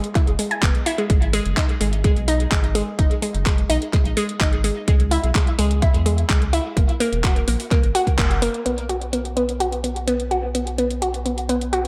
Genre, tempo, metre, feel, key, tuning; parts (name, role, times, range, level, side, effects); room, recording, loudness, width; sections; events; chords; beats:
progressive house; 127 BPM; 4/4; straight; B major; A4 = 440 Hz
pop drum kit; drums; 0.0-11.9 s; handclaps, hi-hat; -30 LUFS; equal; sidechain pumping on hats
analog pluck; arpeggios; 0.2-11.8 s; G#3 to G#5; -25 LUFS; equal; chorus, sidechain pumping, diffuse ambient delay
electronic kick drum; drums; 0.2-8.3 s; -21 LUFS; equal
round analog bass; bass; 0.3-11.9 s; E1 to E2; -26 LUFS; equal; sidechain pumping
moderate plate reverb, RT60 1.5 s; dreamy mix soaked in reverb; -20 LUFS; mono
0.0-8.7 A section; 8.7-11.9 B section
band accent 8.2
0.0 E; 1.1 G#7(no3); 4.9 C#m; 6.8 F#; 8.7 B5
0.15 0.63 | 1.10 1.57 2.04 2.52 | 2.99 3.46 3.93 4.41 | 4.88 5.35 5.82 6.30 | 6.77 7.24 7.71 8.19 | 8.66 9.13 9.60 10.07 | 10.55 11.02 11.49